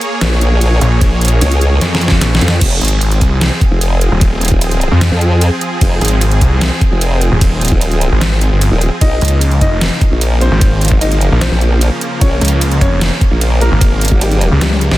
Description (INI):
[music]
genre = heavy wobble dubstep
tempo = 150 BPM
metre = 4/4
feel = half-time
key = F minor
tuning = A4 = 440 Hz
[part]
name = supersaw pad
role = sustained chords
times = 0.0-15.0 s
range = Db3 to Db5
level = -20 LUFS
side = right 1 dB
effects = vintage 12-bit sampler grit, sidechain pumping
[part]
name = dubstep drum kit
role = drums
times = 0.0-15.0 s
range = crash cymbal, hi-hat, ride cymbal, snare drum, toms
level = -18 LUFS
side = equal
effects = none
[part]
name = formant-sweep wobble bass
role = bass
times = 0.2-14.5 s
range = Eb1 to F2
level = -12 LUFS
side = equal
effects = chorus, overdrive
[part]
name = snarling distorted saw bass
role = bass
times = 0.8-15.0 s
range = Eb1 to F2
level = -12 LUFS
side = equal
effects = overdrive
[part]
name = electronic kick drum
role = drums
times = 1.0-14.2 s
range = none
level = -12 LUFS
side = equal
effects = none
[part]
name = dark baby grand piano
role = melody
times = 9.0-15.0 s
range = G3 to Eb5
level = -21 LUFS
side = left 1 dB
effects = digital delay
[sound]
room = little or no reverb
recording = dense, heavily limited modern master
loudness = -10 LUFS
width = side -16 dB against mid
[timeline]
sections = 0.0-2.6 A section; 2.6-15.0 A section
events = drop 0.0-2.6, 2.6-15.0; drum fill 1.8-2.6, 14.6-15.0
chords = 0.0 Bbm7; 2.6 Fm; 9.0 Bbm7